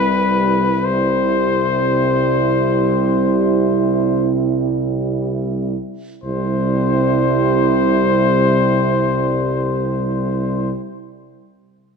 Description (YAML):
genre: classical, hymn-like piece for brass band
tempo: free time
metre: none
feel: none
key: C major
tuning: A4 = 440 Hz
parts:
  - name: warm cornet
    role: melody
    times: 0.0-10.7 s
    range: B4 to C5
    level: -19 LUFS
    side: left 5 dB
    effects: none
  - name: mellow French horn section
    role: second line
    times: 0.0-10.7 s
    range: E4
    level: -21 LUFS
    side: right 10 dB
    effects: none
  - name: clear trombone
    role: accompaniment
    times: 0.0-10.7 s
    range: C3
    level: -24 LUFS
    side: right 3 dB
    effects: none
  - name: clear trombone section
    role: accompaniment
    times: 0.0-10.7 s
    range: G3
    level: -24 LUFS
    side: left 3 dB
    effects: none
  - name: warm tuba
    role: bass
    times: 0.0-10.7 s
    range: C2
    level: -22 LUFS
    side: left 1 dB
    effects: none
room: wet scoring stage reverb, RT60 2.0 s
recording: none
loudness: -15 LUFS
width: side -5 dB against mid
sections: 0.0-6.2 A section; 6.2-12.0 B section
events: slowing down 0.0-6.2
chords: 0.0 C